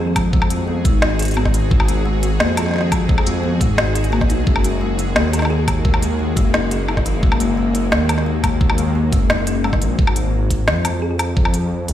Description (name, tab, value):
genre	half-time drum and bass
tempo	174 BPM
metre	4/4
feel	half-time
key	unclear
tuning	A4 = 440 Hz
part	thumb-piano-like synth pluck	melody	0.0-0.1, 5.5-5.6, 11.0-11.2 s	G#4	-32 LUFS	right 1 dB	chorus, dub echo
part	bowed-like drone	sustained chords	0.0-9.9 s	A#3 to G#4	-25 LUFS	left 2 dB	built-in reverb, sidechain pumping
part	kalimba	arpeggios	0.0-10.0 s	D#3 to G#4	-24 LUFS	left 3 dB	dub echo
part	dark detuned saw bass	bass	0.0-11.9 s	F#1 to E#2	-20 LUFS	equal	none
part	electronic kick drum	drums	0.2-11.4 s	none	-17 LUFS	equal	none
part	organic electronic drum kit	drums	0.2-11.9 s	hi-hat, snare drum, woodblock	-21 LUFS	left 1 dB	none
room	light reverb, digital ambience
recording	played on a big sound system in a bare room, large studio reverb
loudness	-15 LUFS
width	side -11 dB against mid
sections	0.0-10.0 A section; 10.0-11.9 A section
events	drop 0.0-10.0, 10.0-11.9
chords	0.0 G#m7; 4.5 F#add9; 10.0 N.C.